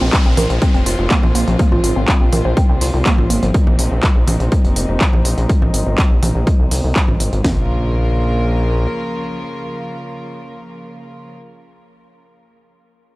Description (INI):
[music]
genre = melodic techno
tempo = 123 BPM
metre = 4/4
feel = straight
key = Bb minor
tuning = A4 = 440 Hz
[part]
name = rich chamber string section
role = sustained chords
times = 0.0-11.4 s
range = Bb2 to Bb4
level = -25 LUFS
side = equal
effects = sidechain pumping, low-pass filter
[part]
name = woody wave-folded pluck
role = arpeggios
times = 0.0-3.5 s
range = F3 to C5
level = -21 LUFS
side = right 1 dB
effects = analog chorus, vintage 12-bit sampler grit, sidechain pumping, tape echo
[part]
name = gritty driven synth bass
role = bass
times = 0.0-8.9 s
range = F1 to C2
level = -17 LUFS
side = equal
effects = sidechain pumping
[part]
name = downlifter and impact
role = sound effects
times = 0.0-3.5, 7.5-11.4 s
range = none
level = -30 LUFS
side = equal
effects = none
[part]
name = breakbeat sampler-style drum kit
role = drums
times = 0.1-7.4 s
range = hi-hat, snare drum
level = -33 LUFS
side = right 1 dB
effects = sidechain pumping on hats, high-pass filter on hats, studio reverb, high-pass filter on snare
[part]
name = techno drum kit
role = drums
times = 0.1-7.6 s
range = kick drum, snare drum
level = -14 LUFS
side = equal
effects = overdrive, studio reverb
[part]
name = techno drum kit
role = drums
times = 0.1-7.3 s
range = congas, handclaps, hi-hat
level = -21 LUFS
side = right 1 dB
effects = overdrive, studio reverb
[sound]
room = little or no reverb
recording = dry, gritty hardware recording, transformer saturation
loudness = -13 LUFS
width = side -20 dB against mid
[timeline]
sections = 0.0-7.4 A section; 7.4-11.3 B section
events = filter sweep on analog synth bass 0.0-7.4; filter sweep on string section 0.0-7.4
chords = 0.0 Bbsus2; 7.4 Bbm